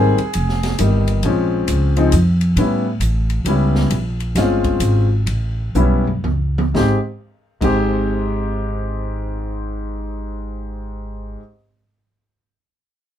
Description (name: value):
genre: jazz piano trio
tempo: 115-135 BPM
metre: 3/4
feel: swing 65% on 8ths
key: Ab major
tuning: A4 = 441 Hz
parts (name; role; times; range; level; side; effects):
- warm baby grand piano; melody; 0.0-11.4 s; Ab2 to Ab4; -20 LUFS; left 2 dB; none
- upright bass; bass; 0.0-11.3 s; F1 to A2; -18 LUFS; equal; none
- open jazz drum kit; drums; 0.2-7.7 s; crash cymbal, hi-hat, kick drum, ride cymbal, snare drum, toms; -27 LUFS; equal; none
room: light reverb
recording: minimal, uncompressed stereo recording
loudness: -16 LUFS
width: side -10 dB against mid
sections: 0.0-1.2 A section; 1.2-6.8 B section; 6.8-9.9 C section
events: slowing down 3.9-6.8; drum fill 5.7-6.8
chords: 0.0 Abmaj7(no3); 1.2 Bbm7; 2.6 A7; 3.9 Bbm7; 5.3 A; 6.8 Abmaj7